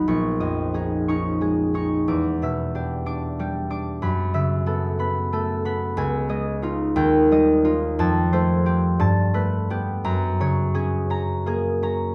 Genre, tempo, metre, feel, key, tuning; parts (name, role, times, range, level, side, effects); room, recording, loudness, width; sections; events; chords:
classical, solo harp piece; 60 BPM (dotted quarters); 6/8; uneven beats, rubato; A4 = 440 Hz
concert harp; solo; 0.0-12.1 s; G#1 to D6; -22 LUFS; equal
light reverb; dark, warm production; -23 LUFS; mono
0.0-12.1 A section
0.1 A#m7; 2.1 Em7; 4.0 F#m7; 6.0 Dbadd9; 7.0 Ebadd9; 8.0 Fadd9; 9.0 Gadd9; 10.0 Gbadd9